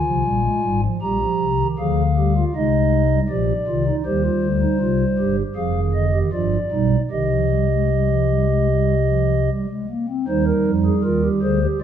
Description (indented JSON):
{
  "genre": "classical, baroque-style 4-part fugue for pipe organ",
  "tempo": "78 BPM",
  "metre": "4/4",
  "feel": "straight",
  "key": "C minor from 4.1 s",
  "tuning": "A4 = 441 Hz",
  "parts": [
    { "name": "pipe organ, stopped flute", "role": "solo", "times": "0.0-11.8 s", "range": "F1 to Bb5", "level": "-17 LUFS", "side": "equal", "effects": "none" }
  ],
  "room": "wet recital hall reverb, RT60 1.7 s",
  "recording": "none",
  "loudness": "-17 LUFS",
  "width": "side -9 dB against mid",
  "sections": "0.0-10.3 A section; 10.3-11.8 B section",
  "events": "none",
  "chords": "0.0 Dm7b5 (rootless); 1.0 Gm/Bb; 4.1 Cm; 5.6 Fm; 6.3 G; 7.1 Cm; 10.3 Cm/Eb"
}